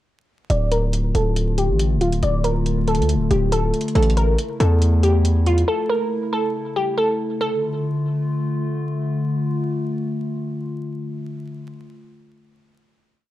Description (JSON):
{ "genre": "hip hop, trap", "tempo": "139 BPM", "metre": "4/4", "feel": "half-time", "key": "D harmonic minor", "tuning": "A4 = 440 Hz", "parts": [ { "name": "glassy wavetable pluck", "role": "melody", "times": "0.5-8.7 s", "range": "F4 to D5", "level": "-22 LUFS", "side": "equal", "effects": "chorus, low-pass filter" }, { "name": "warbly tape-like pad", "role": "sustained chords", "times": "0.5-11.6 s", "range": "C#3 to F4", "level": "-25 LUFS", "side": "left 1 dB", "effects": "chorus, built-in reverb, low-pass filter" }, { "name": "distorted 808-style bass", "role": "bass", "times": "0.5-5.6 s", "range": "D1 to E2", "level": "-18 LUFS", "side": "equal", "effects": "distortion" }, { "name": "electronic hi-hat", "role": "drums", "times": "0.5-5.7 s", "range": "none", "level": "-33 LUFS", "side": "right 1 dB", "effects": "vintage 12-bit sampler grit" } ], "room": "digital ambience", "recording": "dark, warm production, vinyl crackle", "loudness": "-18 LUFS", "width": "side -14 dB against mid", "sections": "0.5-7.4 breakdown; 7.4-10.9 final chord", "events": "filter sweep 0.5-7.4", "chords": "0.5 Dm; 4.0 A; 7.4 Dm", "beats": "| 0.50 0.93 1.36 1.79 | 2.23 2.66 3.09 3.52 | 3.95 4.38 4.82 5.25 | 5.68 6.11 6.54 6.97 | 7.41 7.84 8.27 8.70 | 9.13 9.56 10.00 10.43" }